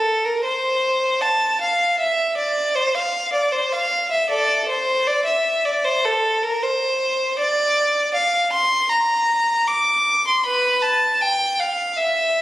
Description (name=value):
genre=classical, baroque-style suite movement for unaccompanied violin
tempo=78 BPM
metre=4/4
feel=rubato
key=F major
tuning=A4 = 439 Hz
part: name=rich violin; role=solo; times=0.0-12.4 s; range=A4 to D6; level=-17 LUFS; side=equal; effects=none
room=moderate recital hall reverb, RT60 1.6 s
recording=recorded on a phone in the room, club reverb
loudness=-17 LUFS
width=side -16 dB against mid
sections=0.0-12.4 A section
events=none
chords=none